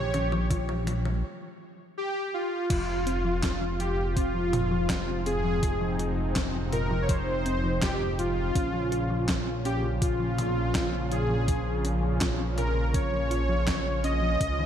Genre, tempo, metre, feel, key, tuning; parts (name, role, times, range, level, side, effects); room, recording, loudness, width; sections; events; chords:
synthwave; 82 BPM; 4/4; straight; A4 = 441 Hz
soft supersaw; melody; 0.0-14.7 s; F4 to Eb5; -30 LUFS; equal; vintage 12-bit sampler grit, ping-pong delay
warm analog pad; sustained chords; 0.0-14.7 s; Ab2 to G4; -34 LUFS; equal; chorus, tremolo, sidechain pumping
chorused synth bass; bass; 0.0-14.7 s; F1 to Db2; -30 LUFS; equal; sidechain pumping
thumb-piano-like synth pluck; arpeggios; 0.1-14.7 s; Eb3 to F4; -36 LUFS; left 2 dB; chorus, ping-pong delay
gated 80s digital drum machine; drums; 0.1-14.6 s; crash cymbal, handclaps, hi-hat, snare drum, toms; -34 LUFS; equal; gated reverb, gated reverb snare, overdrive
electronic kick drum; drums; 0.5-14.6 s; -28 LUFS; equal; overdrive
light reverb, digital ambience; dark, warm production; -25 LUFS; side -9 dB against mid
0.0-2.7 A section; 2.7-14.7 B section
drum fill 0.0-1.2; break 1.2-2.7
0.0 Bbm; 2.7 Fm; 8.6 Bbm